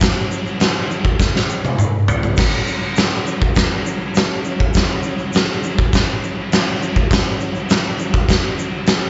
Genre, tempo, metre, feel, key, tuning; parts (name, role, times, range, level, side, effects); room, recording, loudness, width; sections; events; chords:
rock; 102 BPM; 4/4; straight
oversized low-tuned drum kit; drums; 0.0-9.0 s; crash cymbal, kick drum, snare drum, toms; -18 LUFS; equal
tube shaker; percussion; 0.0-9.0 s; -40 LUFS; equal
light reverb, small room ambience; live gig heard through the venue's PA, club reverb, nothing above 7.8 kHz; -18 LUFS; mono
0.0-9.1 A section
drum fill 1.2-2.4